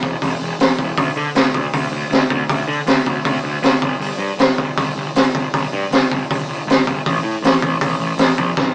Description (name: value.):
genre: punk rock.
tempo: 158 BPM.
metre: 4/4.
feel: straight.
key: unclear.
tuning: A4 = 440 Hz.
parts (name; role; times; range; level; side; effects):
fuzz picked electric bass; bass; 0.0-8.7 s; E1 to D3; -20 LUFS; equal; overdrive.
raw garage drum kit; drums; 0.0-8.7 s; hi-hat, kick drum, snare drum; -16 LUFS; equal; none.
room: little or no reverb.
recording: rough rehearsal-room recording, warm saturation, small speaker sound.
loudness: -15 LUFS.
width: side -29 dB against mid.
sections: 0.0-8.7 A section.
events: drum fill 8.6.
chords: none.